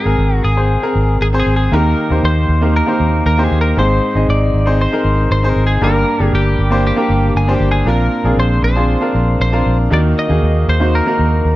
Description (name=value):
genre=piano-driven pop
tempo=117 BPM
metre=4/4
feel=straight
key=unclear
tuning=A4 = 439 Hz
part: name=twelve-string electric guitar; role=melody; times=0.0-11.6 s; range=G4 to Eb5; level=-20 LUFS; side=left 1 dB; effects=none
part: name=bright upright piano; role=accompaniment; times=0.0-11.6 s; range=G2 to Eb5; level=-16 LUFS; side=equal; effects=none
part: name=vintage muted fingered electric bass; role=bass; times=0.1-11.6 s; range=G1 to Eb2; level=-14 LUFS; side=equal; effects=none
room=light reverb, studio ambience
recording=none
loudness=-12 LUFS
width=side -16 dB against mid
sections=0.0-1.7 A section; 1.7-11.6 A section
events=none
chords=0.0 Abadd9; 1.7 Eb; 3.8 Ab; 5.8 Gm; 7.9 Bbadd9; 9.9 Ebm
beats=0.18 0.70 1.21 | 1.72 2.23 2.75 3.26 | 3.77 4.28 4.80 5.31 | 5.82 6.33 6.84 7.36 | 7.87 8.38 8.89 9.40 | 9.91 10.43 10.94 11.45